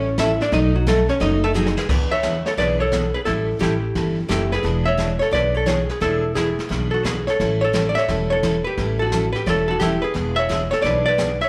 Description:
country, western swing; 174 BPM; 4/4; swing 65% on 8ths; E mixolydian; A4 = 440 Hz
archtop guitar, miked and amplified; melody; 0.0-11.5 s; F#3 to E5; -23 LUFS; equal
picked steel-string acoustic guitar; accompaniment; 0.0-11.3 s; B2 to A4; -28 LUFS; equal; slapback echo
upright bass; bass; 0.0-11.4 s; E1 to E2; -27 LUFS; equal
jazz brush drum kit; drums; 0.2-11.5 s; brushed snare drum, crash cymbal, hi-hat, kick drum, snare drum; -30 LUFS; equal
light reverb, small room ambience; live gig heard through the venue's PA, club reverb; -20 LUFS; mono
0.0-1.9 A section; 1.9-11.5 B section
hollow-body jazz guitar solo 0.0-1.9; drum fill 1.6-1.9
0.0 A7; 0.5 B7; 1.9 E7; 3.3 A7; 4.6 E7; 7.4 A7; 10.2 E7

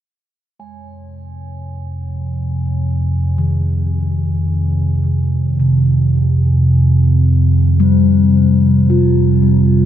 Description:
ambient; 54 BPM; 4/4; straight; F minor; A4 = 440 Hz
analog drone; drone; 1.3-9.9 s; F2 to C3; -13 LUFS; right 1 dB; chorus
bronze singing bowl; texture; 0.6-9.9 s; Ab3 to Ab5; -39 LUFS; right 4 dB; stereo widening
bronze singing bowl; arpeggios; 3.4-9.9 s; C3 to F4; -16 LUFS; left 3 dB; tape echo
wet huge ambient reverb, RT60 7.9 s; in a vast, echoing space; -12 LUFS; side -10 dB against mid
0.6-9.9 A section
fade-in on singing bowl 0.6-9.9; filter sweep on synth drone 0.6-9.9
0.6 Fmadd9

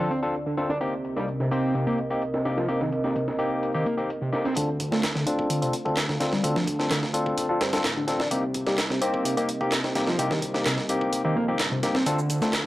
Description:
breakbeat, breaks; 128 BPM; 4/4; straight; D phrygian; A4 = 441 Hz
dark analog pad; sustained chords; 0.0-12.7 s; C3 to F5; -32 LUFS; right 1 dB; chorus, sidechain pumping
overdriven synth lead; riff; 0.0-12.5 s; C3 to D4; -28 LUFS; equal; chorus, analog delay
barky tine electric piano; stabs; 0.0-12.5 s; Bb3 to A4; -28 LUFS; left 1 dB; overdrive, vintage 12-bit sampler grit, low-pass filter, analog delay
breakbeat sampler-style drum kit; drums; 0.1-12.6 s; hi-hat, kick drum, snare drum; -29 LUFS; equal; high-pass filter on kick, low-pass filter on kick, high-pass filter on hats, low-pass filter on hats, high-pass filter on snare, low-pass filter on snare
fat analog bass; bass; 4.6-12.7 s; G1 to G2; -34 LUFS; equal; high-pass filter
electronic handclaps and shaker; drums; 5.0-12.6 s; -31 LUFS; right 1 dB
light reverb; dry, gritty hardware recording; -23 LUFS; side -16 dB against mid
0.0-4.6 A section; 4.6-12.7 B section
build-up 4.6-12.7; filter sweep on analog synth lead 4.6-12.7; filter sweep on tine electric piano 4.6-12.7
0.0 Dm7; 0.8 Cm7; 4.6 Dm7; 8.3 Cm7; 12.1 Dm7

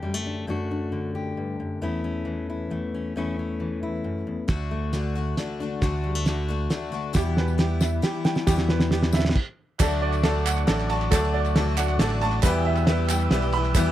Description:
indie folk with a building arrangement; 136 BPM; 3/4; straight; D major; A4 = 439 Hz
fingerpicked steel-string acoustic guitar; accompaniment; 0.0-7.2 s; D2 to G4; -28 LUFS; left 2 dB
picked twelve-string acoustic guitar; accompaniment; 4.5-13.9 s; E2 to G4; -29 LUFS; left 6 dB
picked electric bass; bass; 4.5-13.9 s; A1 to E2; -25 LUFS; right 1 dB
cloth-damped thuddy drum kit; drums; 4.5-13.8 s; crash cymbal, hi-hat, kick drum, ride cymbal, snare drum; -24 LUFS; right 1 dB
tambourine; percussion; 7.1-13.8 s; -38 LUFS; left 17 dB
bright upright piano; arpeggios; 7.2-13.9 s; G4 to B5; -29 LUFS; right 8 dB
felt-muted upright piano; accompaniment; 9.8-13.9 s; D2 to E5; -31 LUFS; left 5 dB
mellow tonewheel organ; sustained chords; 9.8-13.9 s; A4 to E6; -33 LUFS; right 1 dB; slow rotary speaker
group handclap; percussion; 9.8-13.9 s; -33 LUFS; right 12 dB
little or no reverb; dry, close 1970s-style studio recording; -22 LUFS; side -12 dB against mid
0.0-4.5 A section; 4.5-9.8 B section; 9.8-13.9 C section
build-up 4.5-9.8; drum fill 4.5-9.4; stop 9.4-9.8
0.0 D/F#; 1.8 A/E; 4.5 D; 7.2 Em; 9.8 D; 12.4 Em

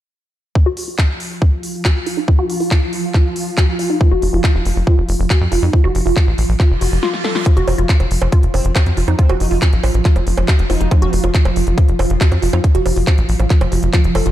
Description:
psychedelic trance; 139 BPM; 4/4; straight; F major; A4 = 441 Hz
swarming drone; sustained chords; 1.2-14.3 s; F3 to F4; -23 LUFS; right 2 dB; built-in reverb, sidechain pumping
woody wave-folded pluck; riff; 0.6-14.3 s; Eb4 to A4; -22 LUFS; moving between left 5 dB and right 9 dB; chorus, auto-pan, sidechain pumping, dub echo
electronic kick drum; drums; 0.6-14.0 s; -12 LUFS; equal; overdrive, studio reverb
techno drum kit; drums; 0.8-14.3 s; bongos, handclaps, hi-hat, snare drum; -23 LUFS; right 1 dB; studio reverb
tight sequencer bass; bass; 4.1-14.3 s; F1 to F2; -16 LUFS; equal
reverse cymbal; sound effects; 6.8-7.5 s; -28 LUFS; right 5 dB
formant-sweep wobble bass; second line; 8.5-11.1 s; C4 to Eb4; -32 LUFS; equal
light reverb, digital ambience; dark, warm production; -13 LUFS; side -13 dB against mid
0.6-7.5 A section; 7.5-14.3 B section
filter sweep on synth arpeggio sound 0.6-7.5; reverse cymbal 6.8-7.5; break 7.0-7.5; drum fill 7.0-7.5

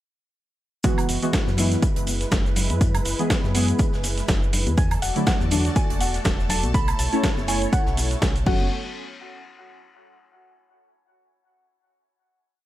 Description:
deep house; 122 BPM; 4/4; swing 56% on 16ths; F# minor; A4 = 441 Hz
warm analog pad; sustained chords; 1.5-8.7 s; G#3 to D5; -33 LUFS; right 1 dB; chorus, sidechain pumping
deep mellow chord stab; stabs; 0.8-8.7 s; D3 to C#5; -27 LUFS; equal; chorus, vintage 12-bit sampler grit, sidechain pumping, dub echo
big rock drum kit; drums; 0.8-8.4 s; hi-hat, shaker, snare drum; -38 LUFS; equal; high-pass filter on hats, high-pass filter on snare, high-pass filter on perc, high-pass filter on room
dusty soul sampler-style drum kit; drums; 0.8-8.6 s; cabasa, crash cymbal, hi-hat, snare drum, woodblock; -28 LUFS; right 1 dB
electronic kick drum; drums; 0.8-8.6 s; -23 LUFS; equal; overdrive
sub bass with octave; bass; 1.1-8.7 s; E1 to F#2; -25 LUFS; equal; sidechain pumping
congas; percussion; 1.5-8.7 s; -34 LUFS; left 3 dB; sidechain pumping on perc
soft round pluck; melody; 4.8-8.7 s; F#5 to B5; -30 LUFS; equal; chorus, dub echo
string machine, violins; texture; 4.8-8.7 s; A4 to A5; -37 LUFS; right 1 dB; ensemble chorus
small room ambience; -19 LUFS; side -14 dB against mid
0.8-8.7 drop; 8.7-10.7 final hit
drop 0.8-8.7
0.8 F#9sus4; 4.8 E9sus4; 6.7 B9sus4; 8.5 F#m; 8.7 N.C.

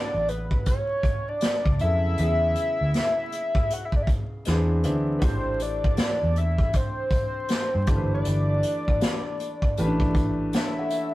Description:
R&B, neo-soul; 79 BPM; 4/4; swing 63% on 16ths; A4 = 440 Hz
hollow square lead; melody; 0.0-11.1 s; B4 to F#5; -27 LUFS; equal; chorus
clear concert grand piano; accompaniment; 0.0-11.1 s; C#3 to A5; -30 LUFS; equal
vintage muted fingered electric bass; bass; 0.1-10.5 s; G1 to G2; -25 LUFS; equal
unplugged drum kit; drums; 0.3-11.1 s; hi-hat, kick drum, snare drum; -25 LUFS; equal
moderate studio reverb, RT60 0.7 s; rough rehearsal-room recording, vinyl crackle; -22 LUFS; side -17 dB against mid
0.0-11.1 A section
0.0 Dmaj9; 2.2 E; 4.5 E7b13; 5.2 Am7; 7.9 Gadd9; 9.8 A9sus4

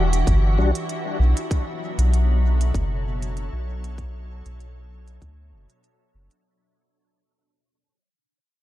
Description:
ambient dub; 97 BPM; 4/4; swing 53% on 16ths; A4 = 437 Hz
soft additive organ-like pad; sustained chords; 0.0-6.5 s; B2 to E5; -29 LUFS; left 1 dB; ensemble chorus, built-in reverb
soft dub sub bass; bass; 0.0-6.3 s; E1 to D2; -20 LUFS; equal
electronic hi-hat; drums; 0.1-6.4 s; -34 LUFS; right 5 dB; studio reverb
electronic kick drum; drums; 0.3-5.3 s; -23 LUFS; equal; studio reverb
bright tonewheel organ; stabs; 0.6-0.7 s; G3 to F#4; -30 LUFS; left 4 dB; chorus vibrato, slow rotary speaker, dub echo
little or no reverb; echo-heavy mix; -20 LUFS; side -15 dB against mid
0.0-6.5 A section
fade-out 0.0-6.5
0.0 Em9; 1.5 Bm11

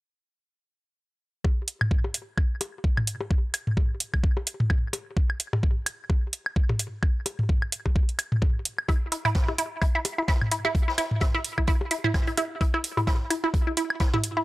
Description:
minimal techno; 129 BPM; 4/4; swing 57% on 16ths; A4 = 438 Hz
electronic kick drum; drums; 1.4-14.1 s; -23 LUFS; equal; overdrive
electronic percussion blips, toms and claves; percussion; 1.4-14.2 s; -29 LUFS; left 1 dB; overdrive, tape echo
electronic hi-hat; drums; 1.7-14.3 s; -28 LUFS; right 1 dB; overdrive
resonant blip pluck; riff; 8.9-14.4 s; E4; -27 LUFS; right 1 dB; phaser, sidechain pumping, tape echo
swinging big-band drum kit; drums; 8.9-14.4 s; hi-hat, snare drum; -40 LUFS; right 2 dB; high-pass filter on hats, high-pass filter on snare, high-pass filter on room
small room ambience; dry, gritty hardware recording, transformer saturation; -23 LUFS; side -18 dB against mid
1.4-14.4 A section

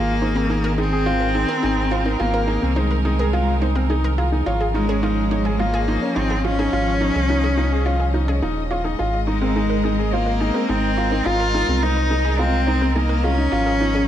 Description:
piano and strings electronica; 106 BPM; 4/4; straight; Ab major; A4 = 442 Hz
rich cello; melody; 0.0-14.1 s; Ab3 to F4; -23 LUFS; left 1 dB
dark chamber string section; sustained chords; 0.0-14.1 s; Eb3 to Eb5; -27 LUFS; right 1 dB
clear upright piano; riff; 0.0-14.0 s; C4 to Ab4; -24 LUFS; left 1 dB
warm sub bass; bass; 0.0-14.1 s; Eb1 to C2; -22 LUFS; equal; tube saturation
analog pluck; arpeggios; 0.2-14.0 s; F4 to Db5; -31 LUFS; right 3 dB; chorus, tape echo
light reverb, studio ambience; dark, warm production; -18 LUFS; side -11 dB against mid
0.0-14.1 A section
0.0 Abadd9; 4.5 Dbadd9/Ab; 9.0 Abadd9; 13.5 Dbadd9/Ab

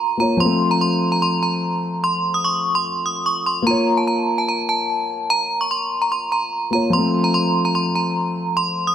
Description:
hip hop; 147 BPM; 4/4; half-time; Bb harmonic minor; A4 = 439 Hz
metallic FM bell; melody; 0.0-8.9 s; A5 to Eb6; -19 LUFS; right 1 dB; chorus, phaser
dark grand piano; accompaniment; 0.0-8.9 s; F3 to Db5; -21 LUFS; left 1 dB
light reverb, small room ambience; -17 LUFS; side -9 dB against mid
0.0-8.9 A section
0.4 F; 3.7 Bbm; 6.9 F

